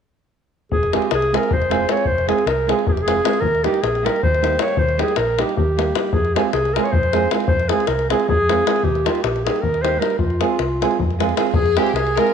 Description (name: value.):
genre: balkan folk, Balkan wedding band.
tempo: 311 BPM (eighths).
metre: 7/8.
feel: straight.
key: F minor.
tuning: A4 = 439 Hz.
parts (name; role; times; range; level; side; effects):
dark clarinet; melody; 0.7-12.3 s; F4 to Db5; -20 LUFS; equal; none.
hollow-body short-scale fingered electric bass; bass; 0.7-12.2 s; F1 to F2; -24 LUFS; equal; none.
davul; percussion; 0.7-12.3 s; none; -22 LUFS; left 6 dB; none.
nylon-string guitar; accompaniment; 0.9-12.3 s; G3 to Ab4; -23 LUFS; right 11 dB; none.
dark violin; second line; 11.5-12.3 s; G4 to Bb4; -23 LUFS; left 10 dB; none.
room: moderate echo chamber reverb, RT60 1.6 s.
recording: 1960s-style stereo with parts hard left and right.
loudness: -16 LUFS.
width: side -7 dB against mid.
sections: 0.7-11.5 A section.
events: none.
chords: 0.7 Fm; 3.4 Eb; 6.1 Fm; 8.8 Eb; 10.2 Fm.